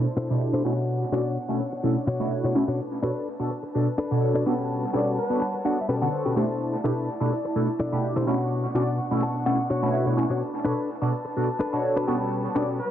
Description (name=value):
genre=filtered disco house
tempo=126 BPM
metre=4/4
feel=swing 53% on 16ths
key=unclear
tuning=A4 = 440 Hz
part: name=funky polysynth comp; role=accompaniment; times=0.0-12.6 s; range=B2 to C#6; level=-26 LUFS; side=right 1 dB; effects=chorus, phaser, vintage 12-bit sampler grit, low-pass filter, dub echo
part: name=warm chamber string section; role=sustained chords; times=0.0-12.9 s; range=B2 to C#6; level=-32 LUFS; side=right 1 dB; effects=low-pass filter
part: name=direct-recorded clean electric guitar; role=riff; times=0.2-12.8 s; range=B2 to A5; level=-27 LUFS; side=left 2 dB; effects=low-pass filter
part: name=cabasa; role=drums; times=0.2-12.9 s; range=none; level=-69 LUFS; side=right 1 dB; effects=none
part: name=brilliant trumpet section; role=melody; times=1.1-1.3, 4.9-5.5, 8.7-8.9, 12.5-12.9 s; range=B4 to D5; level=-33 LUFS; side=equal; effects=low-pass filter, dub echo
room=light reverb, small room ambience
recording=echo-heavy mix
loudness=-23 LUFS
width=side -10 dB against mid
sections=0.0-12.9 A section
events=filter sweep 0.0-12.9; clean electric guitar fill 5.2-6.6, 9.0-10.4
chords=0.0 C69/B; 0.7 Dmaj7/B; 2.8 Bm7; 4.5 Gmaj9#11/B; 6.4 C69/B; 8.3 Dmaj7/B; 10.4 Bm7; 12.1 Gmaj9#11/B